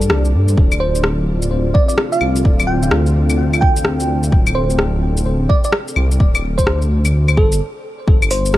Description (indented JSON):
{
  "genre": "future garage",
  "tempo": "128 BPM",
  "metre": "4/4",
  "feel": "swing 64% on 16ths",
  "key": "D minor",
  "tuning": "A4 = 439 Hz",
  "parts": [
    { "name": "bell-like FM electric piano", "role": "melody", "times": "0.0-8.6 s", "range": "A4 to G5", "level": "-22 LUFS", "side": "right 1 dB", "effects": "chorus, tremolo, ping-pong delay" },
    { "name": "dark analog pad", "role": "sustained chords", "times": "0.0-8.6 s", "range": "Bb3 to D5", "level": "-24 LUFS", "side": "left 1 dB", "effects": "chorus, sidechain pumping" },
    { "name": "dark detuned saw bass", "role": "bass", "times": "0.0-8.6 s", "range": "D1 to G2", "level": "-16 LUFS", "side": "equal", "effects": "sidechain pumping" },
    { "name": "deep house drum kit", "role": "drums", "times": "0.0-8.6 s", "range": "claves, hi-hat, rim click, shaker", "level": "-20 LUFS", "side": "left 1 dB", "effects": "overdrive, studio reverb" },
    { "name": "electronic kick drum", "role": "drums", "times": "0.6-8.2 s", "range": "none", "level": "-14 LUFS", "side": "equal", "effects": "overdrive, studio reverb" }
  ],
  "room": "digital ambience",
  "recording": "vinyl crackle, lossy compression artefacts",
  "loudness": "-13 LUFS",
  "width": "side -15 dB against mid",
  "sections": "0.0-8.1 A section",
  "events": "stop 7.6-8.1",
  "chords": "0.0 Gm7; 0.6 Dm7; 8.1 Gm7"
}